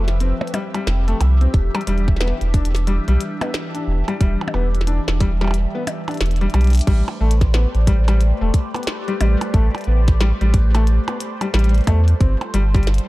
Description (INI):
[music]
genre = IDM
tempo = 90 BPM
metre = 4/4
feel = swing 62% on 16ths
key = A minor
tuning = A4 = 441 Hz
[part]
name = phased analog pad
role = sustained chords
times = 0.0-13.1 s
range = E3 to E5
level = -28 LUFS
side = equal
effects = phaser, chorus, vintage 12-bit sampler grit
[part]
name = warm sub bass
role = bass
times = 0.0-13.0 s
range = E1 to E2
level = -16 LUFS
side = equal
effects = none
[part]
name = glitchy drum kit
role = drums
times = 0.1-13.1 s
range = crash cymbal, hi-hat, percussion blips, snare drum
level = -28 LUFS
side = equal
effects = none
[part]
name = felt-muted upright piano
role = arpeggios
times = 0.2-12.8 s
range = G3 to D4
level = -26 LUFS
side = left 3 dB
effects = tape echo
[part]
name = electronic kick drum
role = drums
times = 1.5-12.8 s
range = none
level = -16 LUFS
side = equal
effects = none
[sound]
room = digital ambience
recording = dark, warm production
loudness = -16 LUFS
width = side -19 dB against mid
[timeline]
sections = 0.0-6.9 A section; 6.9-13.1 B section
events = drum fill 6.5-6.9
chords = 0.0 Fmaj7sus2; 1.5 Em7; 6.9 Am11; 12.2 G9sus4